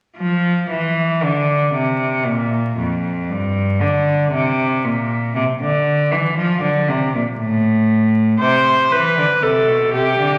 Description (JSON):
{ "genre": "classical, baroque-style fugue for string quartet", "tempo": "58 BPM", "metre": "4/4", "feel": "straight", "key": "F major", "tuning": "A4 = 440 Hz", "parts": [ { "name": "rich cello", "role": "bass", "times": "0.2-10.4 s", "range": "F2 to F3", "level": "-18 LUFS", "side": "equal", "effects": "none" }, { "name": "warm viola", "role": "accompaniment", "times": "8.4-10.4 s", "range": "G4 to C5", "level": "-16 LUFS", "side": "equal", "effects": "none" } ], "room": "wet concert hall reverb, RT60 1.7 s", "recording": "vinyl crackle", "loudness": "-17 LUFS", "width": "mono", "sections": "0.2-10.4 A section", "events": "none", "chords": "0.2 F5; 2.3 Gm7; 4.3 C7; 6.4 F (rootless); 8.4 C" }